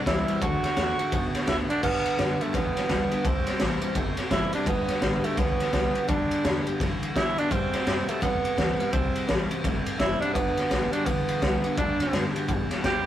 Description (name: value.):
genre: rockabilly.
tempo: 169 BPM.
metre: 4/4.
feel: swing 62% on 8ths.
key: G major.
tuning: A4 = 441 Hz.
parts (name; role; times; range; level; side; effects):
picked steel-string acoustic guitar; accompaniment; 0.0-13.1 s; G2 to G4; -33 LUFS; left 3 dB; none.
electric guitar through a small old amp; riff; 0.0-13.0 s; G2 to B3; -32 LUFS; right 1 dB; warbly pitch drift.
warm tenor saxophone; melody; 0.1-13.1 s; A3 to G4; -28 LUFS; right 3 dB; none.
upright bass; bass; 0.1-13.1 s; F#1 to G2; -34 LUFS; left 1 dB; none.
raw garage drum kit; drums; 0.1-12.9 s; crash cymbal, kick drum, ride cymbal, snare drum; -27 LUFS; left 1 dB; none.
room: light reverb.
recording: rough rehearsal-room recording, warm saturation.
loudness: -23 LUFS.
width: side -11 dB against mid.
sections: 0.0-1.8 A section; 1.8-13.1 A section.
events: none.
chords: 0.4 D; 1.8 G; 3.2 C; 4.7 G; 7.5 C; 10.3 G.